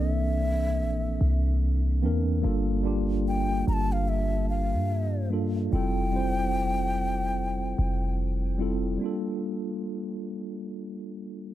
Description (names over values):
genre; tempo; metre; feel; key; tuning
contemporary R&B; 73 BPM; 4/4; swing 58% on 16ths; G dorian; A4 = 438 Hz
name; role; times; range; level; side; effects
hollow bass bansuri; melody; 0.0-8.2 s; E5 to Bb5; -32 LUFS; left 2 dB; none
mellow tine electric piano; accompaniment; 0.0-11.5 s; E3 to C5; -30 LUFS; equal; medium stereo tremolo
warm 808-style bass; bass; 0.0-9.0 s; F1 to G2; -27 LUFS; equal; none
room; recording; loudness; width
small room reverb; none; -25 LUFS; side -13 dB against mid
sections
0.0-9.0 A section; 9.0-11.5 B section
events
none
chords
0.0 C13; 2.4 Gm9; 5.7 Fmaj9; 9.0 Gm9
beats
0.79 1.61 | 2.44 3.26 4.08 4.90 | 5.72 6.55 7.37 8.19 | 9.01 9.83 10.65 11.48